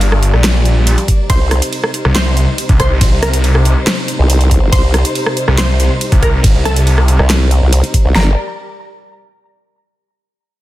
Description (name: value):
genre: heavy wobble dubstep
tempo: 140 BPM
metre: 4/4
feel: half-time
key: G minor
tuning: A4 = 440 Hz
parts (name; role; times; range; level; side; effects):
- wide unison pluck; melody; 0.0-8.3 s; A4 to F6; -22 LUFS; equal; tape echo
- dark studio string section; sustained chords; 0.0-8.4 s; C3 to D5; -22 LUFS; left 1 dB; sidechain pumping
- snarling distorted saw bass; bass; 0.0-7.2 s; G1 to C2; -11 LUFS; equal; distortion, overdrive
- dubstep drum kit; drums; 0.0-8.0 s; handclaps, hi-hat, ride cymbal, rim click, snare drum; -18 LUFS; equal; soft clipping on snare
- dubstep drum kit; drums; 1.1-8.3 s; kick drum, snare drum; -12 LUFS; equal; overdrive
- formant-sweep wobble bass; bass; 1.3-1.6, 4.2-8.4 s; G1 to C2; -11 LUFS; equal; chorus, overdrive
room: light reverb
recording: dense, heavily limited modern master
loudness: -10 LUFS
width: side -15 dB against mid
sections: 0.0-8.2 A section; 8.2-9.9 B section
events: drop 0.0-8.2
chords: 0.0 Gm; 1.3 Cm; 8.2 Gm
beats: 0.01 0.44 0.87 | 1.30 1.73 2.15 2.58 | 3.01 3.44 3.87 4.30 | 4.73 5.15 5.58 6.01 | 6.44 6.87 7.30 7.73 | 8.15